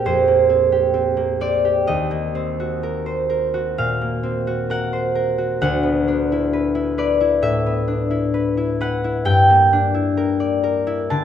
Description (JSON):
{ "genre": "classical, solo harp piece", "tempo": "65 BPM", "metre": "4/4", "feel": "rubato", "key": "unclear", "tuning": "A4 = 439 Hz", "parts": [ { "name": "concert harp", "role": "solo", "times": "0.0-11.2 s", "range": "Bb1 to A5", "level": "-17 LUFS", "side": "equal", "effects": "none" } ], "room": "moderate scoring stage reverb, RT60 1.6 s", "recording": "dark, warm production", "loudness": "-17 LUFS", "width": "side -9 dB against mid", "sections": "0.0-11.2 A section", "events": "none", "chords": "0.0 Bb69; 1.9 Ebm6; 5.6 D69; 9.3 Gm6" }